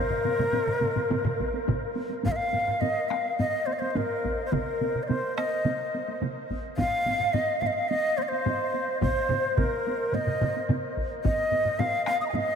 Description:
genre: japanese traditional, taiko drum ensemble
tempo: 107 BPM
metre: 4/4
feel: straight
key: unclear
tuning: A4 = 440 Hz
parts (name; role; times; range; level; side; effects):
- breathy shakuhachi; melody; 0.0-12.6 s; Bb4 to Eb6; -26 LUFS; equal; none
- taiko ensemble; percussion; 0.1-12.5 s; none; -32 LUFS; left 3 dB; none
- taiko ensemble; percussion; 0.1-10.8 s; none; -32 LUFS; right 4 dB; none
- taiko ensemble; percussion; 0.3-12.6 s; none; -34 LUFS; right 2 dB; none
- taiko ensemble; percussion; 1.4-11.4 s; none; -32 LUFS; equal; none
room: wet huge ambient reverb, RT60 8.1 s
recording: in a vast, echoing space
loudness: -24 LUFS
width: side -7 dB against mid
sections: 0.0-2.3 A section; 2.3-12.6 B section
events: speeding up 0.0-12.6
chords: none

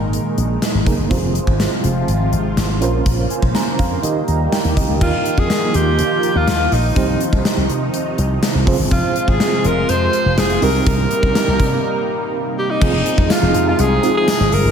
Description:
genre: 1980s-style pop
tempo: 123 BPM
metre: 4/4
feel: straight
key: F minor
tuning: A4 = 440 Hz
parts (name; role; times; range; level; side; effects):
- FM electric piano with tremolo; accompaniment; 0.0-14.7 s; Bb3 to Bb5; -23 LUFS; right 5 dB; none
- lush unison pad; sustained chords; 0.0-14.7 s; Bb2 to C5; -22 LUFS; equal; chorus, phaser
- slap bass with an envelope filter; bass; 0.0-14.7 s; F1 to Eb3; -19 LUFS; equal; none
- gated 80s drum kit; drums; 0.1-14.6 s; crash cymbal, hi-hat, kick drum, snare drum, tambourine; -19 LUFS; left 1 dB; none
- bright alto saxophone; melody; 5.0-14.7 s; Eb4 to C5; -19 LUFS; equal; diffuse ambient delay
room: moderate lush hall reverb, RT60 1.9 s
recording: dreamy mix soaked in reverb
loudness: -14 LUFS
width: side -7 dB against mid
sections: 0.0-5.0 A section; 5.0-12.8 B section; 12.8-14.7 C section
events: break 11.8-12.8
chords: 0.0 Absus2; 1.1 Fm; 2.8 Bbmadd9; 4.0 Eb; 5.0 Ebadd9; 7.0 Cm; 8.7 Fm; 10.6 Cm7; 12.8 Fm7

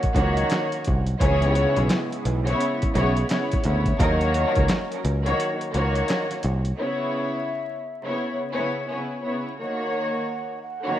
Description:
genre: hip hop, boom-bap hip-hop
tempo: 86 BPM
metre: 4/4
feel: swing 61% on 16ths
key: C# dorian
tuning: A4 = 440 Hz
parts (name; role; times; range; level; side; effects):
- breathy mellow jazz flute; melody; 0.0-0.5, 7.1-11.0 s; E5 to G#5; -34 LUFS; equal; high-pass filter, low-pass filter, ping-pong delay
- warm analog pad; sustained chords; 0.0-6.8 s; C#3 to E4; -35 LUFS; right 1 dB; none
- boom bap sampler-style drum kit; drums; 0.0-6.8 s; handclaps, hi-hat, kick drum, snare drum; -25 LUFS; equal; vintage 12-bit sampler grit
- picked electric bass; bass; 0.1-6.7 s; B1 to D#2; -23 LUFS; equal; none
- dark studio string section; accompaniment; 0.2-11.0 s; C#3 to C#5; -25 LUFS; equal; cassette tape, high-pass filter, low-pass filter
- warm studio string section; stabs; 1.2-4.3 s; E3 to A#4; -32 LUFS; left 1 dB; high-pass filter, low-pass filter, ping-pong delay
room: light reverb, small room reverb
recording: rough home demo mix, vinyl crackle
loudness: -21 LUFS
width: side -12 dB against mid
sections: 0.0-6.8 A section; 6.8-11.0 B section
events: break 5.4-6.8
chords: 0.0 D#m7; 1.2 C#m7; 4.0 D#m7; 6.8 C#m7; 9.6 D#m7

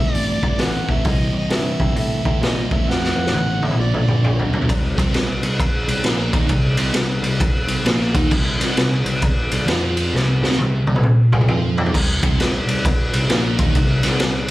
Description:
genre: blues rock power trio and southern rock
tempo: 132 BPM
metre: 4/4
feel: swing 63% on 8ths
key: unclear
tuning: A4 = 439 Hz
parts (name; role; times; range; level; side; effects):
- warm harmonica; melody; 0.0-4.5 s; D5 to F#5; -27 LUFS; right 2 dB; overdrive, slapback echo
- thick fuzz guitar; riff; 0.0-14.5 s; A2 to F4; -23 LUFS; equal; distortion
- picked electric bass; bass; 0.0-14.5 s; G1 to Bb2; -23 LUFS; equal; none
- raw garage drum kit; drums; 0.1-14.5 s; crash cymbal, hi-hat, kick drum, ride cymbal, snare drum, toms; -18 LUFS; equal; none
room: small room ambience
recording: live gig heard through the venue's PA, club reverb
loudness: -16 LUFS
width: side -17 dB against mid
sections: 0.0-4.7 A section; 4.7-11.9 B section; 11.9-14.5 B section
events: drum fill 2.9-4.7, 10.1-11.9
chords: 0.0 Am; 1.1 C; 2.6 Am; 3.8 Bb; 4.7 Bbsus24

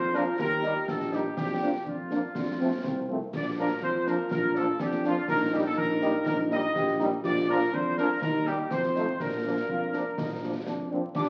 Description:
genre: military-style march for wind band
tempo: 123 BPM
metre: 2/4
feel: straight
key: Bb major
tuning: A4 = 439 Hz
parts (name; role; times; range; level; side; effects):
- dark trumpet section; melody; 0.0-10.6 s; F4 to Eb5; -32 LUFS; equal; none
- dark euphonium; second line; 0.0-11.3 s; Bb3 to G4; -34 LUFS; equal; none
- dark tuba; bass; 0.0-11.3 s; Bb1 to Bb2; -36 LUFS; equal; none
- mellow French horn section; accompaniment; 0.1-11.0 s; F3 to Eb4; -36 LUFS; equal; none
- dark trombone section; sustained chords; 0.1-11.3 s; F3 to F4; -38 LUFS; equal; none
- concert snare drum, concert bass drum and clash cymbals; drums; 0.1-11.3 s; none; -39 LUFS; equal; none
- bright flute section; second line; 11.2 s; D6; -34 LUFS; equal; none
room: wet large studio reverb, RT60 1.3 s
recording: very old 78 rpm record, vinyl crackle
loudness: -28 LUFS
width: mono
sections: 0.0-11.2 A section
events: none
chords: 0.4 Eb; 1.4 Bb/F; 2.4 F; 3.3 Bb; 5.3 Eb/Bb; 7.2 Bb; 8.2 Eb; 8.7 F7; 9.2 Bb

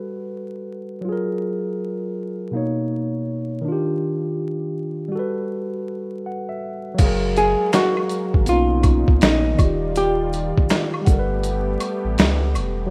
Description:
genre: lo-fi hip hop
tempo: 81 BPM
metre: 4/4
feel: swing 63% on 16ths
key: unclear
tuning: A4 = 443 Hz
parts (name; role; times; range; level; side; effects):
- tine electric piano; accompaniment; 0.0-12.9 s; B2 to F#5; -27 LUFS; equal; cassette tape, low-pass filter
- warm analog pad; sustained chords; 7.0-12.9 s; C#3 to D5; -33 LUFS; equal; chorus, low-pass filter
- warm sub bass; bass; 7.0-12.9 s; Eb1 to C#2; -25 LUFS; equal; none
- boom bap sampler-style drum kit; drums; 7.0-12.8 s; crash cymbal, finger snaps, hi-hat, kick drum, snare drum; -20 LUFS; equal; vintage 12-bit sampler grit
- maracas and woodblock; percussion; 7.0-12.8 s; none; -37 LUFS; equal; none
- hollow-body jazz guitar; melody; 7.4-12.1 s; D#4 to Ab4; -23 LUFS; equal; low-pass filter
room: light reverb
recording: rough home demo mix, vinyl crackle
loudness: -21 LUFS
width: mono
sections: 0.0-7.0 A section; 7.0-12.9 B section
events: tine electric piano fill 5.9-7.0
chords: 0.0 Gmaj9; 1.1 Gbmaj9; 2.5 Bmaj9; 3.7 Ebmaj9; 5.1 Gmaj9; 7.0 Gbmaj9; 8.5 Bmaj9; 9.6 Ebmaj9; 11.1 Gmaj9

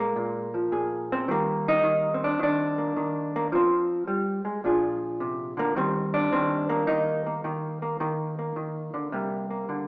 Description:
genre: solo jazz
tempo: 107 BPM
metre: 4/4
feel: swing 66% on 8ths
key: Eb major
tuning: A4 = 440 Hz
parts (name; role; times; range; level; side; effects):
- hollow-body jazz guitar; solo; 0.0-9.9 s; Bb2 to Ab4; -24 LUFS; equal; none
room: wet large studio reverb, RT60 1.2 s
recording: heard from further back in the room, AM radio sound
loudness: -24 LUFS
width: side -26 dB against mid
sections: 0.0-9.9 A section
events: none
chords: 0.0 Bb5; 1.3 Ebmaj7; 3.5 Fm; 4.6 Bb7; 5.8 Ebmaj7; 9.1 C7(no3)

